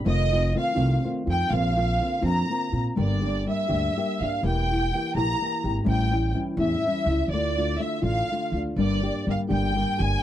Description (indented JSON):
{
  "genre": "mexican folk, mariachi",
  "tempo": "82 BPM (dotted quarters)",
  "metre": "6/8",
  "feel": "rubato",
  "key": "D minor",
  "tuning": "A4 = 440 Hz",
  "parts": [
    { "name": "nylon-string guitar", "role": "accompaniment", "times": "0.0-10.2 s", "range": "F2 to G4", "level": "-27 LUFS", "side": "left 2 dB", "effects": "none" },
    { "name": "rich symphonic violin section", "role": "melody", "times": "0.1-10.2 s", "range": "D5 to Bb5", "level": "-27 LUFS", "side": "equal", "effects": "none" },
    { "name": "upright bass", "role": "bass", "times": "0.1-10.2 s", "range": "E1 to Bb2", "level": "-26 LUFS", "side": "right 1 dB", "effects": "none" }
  ],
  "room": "little or no reverb",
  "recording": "dry, close 1970s-style studio recording",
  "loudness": "-22 LUFS",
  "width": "side -12 dB against mid",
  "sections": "0.0-8.8 A section; 8.8-10.2 B section",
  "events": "none",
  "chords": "0.1 F7; 1.5 Bbadd9; 3.0 Gm; 4.4 Edim; 5.9 A7; 7.3 Dm; 8.8 Gm",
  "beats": "| 0.07 0.79 | 1.51 2.24 | 2.97 3.70 | 4.43 5.15 | 5.87 6.58 | 7.30 8.03 | 8.77 9.50"
}